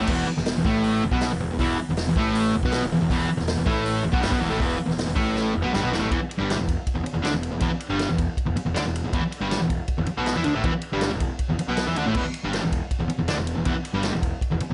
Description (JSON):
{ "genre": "garage rock duo or trio", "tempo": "159 BPM", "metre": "4/4", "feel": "straight", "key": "E minor", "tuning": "A4 = 440 Hz", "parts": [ { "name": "fuzz guitar", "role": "riff", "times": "0.0-14.7 s", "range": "E2 to E4", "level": "-26 LUFS", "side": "equal", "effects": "distortion" }, { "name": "fuzz picked electric bass", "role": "bass", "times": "0.0-14.7 s", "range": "E1 to E2", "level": "-32 LUFS", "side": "equal", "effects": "overdrive" }, { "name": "vintage drum kit", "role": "drums", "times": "0.1-14.7 s", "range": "crash cymbal, hi-hat, kick drum, ride cymbal, snare drum", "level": "-30 LUFS", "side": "equal", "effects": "none" } ], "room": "moderate studio reverb, RT60 0.5 s", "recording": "nothing above 10.9 kHz", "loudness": "-24 LUFS", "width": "mono", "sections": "0.0-6.1 A section; 6.1-14.7 B section", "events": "drum fill 5.4-6.1", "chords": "0.0 E5; 6.1 Em" }